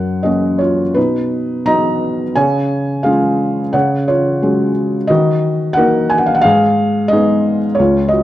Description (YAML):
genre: classical, lyrical solo piano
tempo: 88 BPM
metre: 4/4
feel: rubato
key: F# major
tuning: A4 = 442 Hz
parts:
  - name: felt-muted upright piano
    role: solo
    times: 0.0-8.2 s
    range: C#2 to A#5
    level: -12 LUFS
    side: equal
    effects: none
room: moderate recital hall reverb, RT60 1.4 s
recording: dark, warm production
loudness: -12 LUFS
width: side -14 dB against mid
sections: 0.0-8.2 A section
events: none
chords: 0.0 F#; 1.0 B; 2.4 C#; 3.7 F#sus2/C#; 5.1 D#m; 6.4 G#m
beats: 0.24 0.96 1.67 | 2.37 3.06 3.74 4.42 | 5.09 5.77 6.45 7.12 | 7.79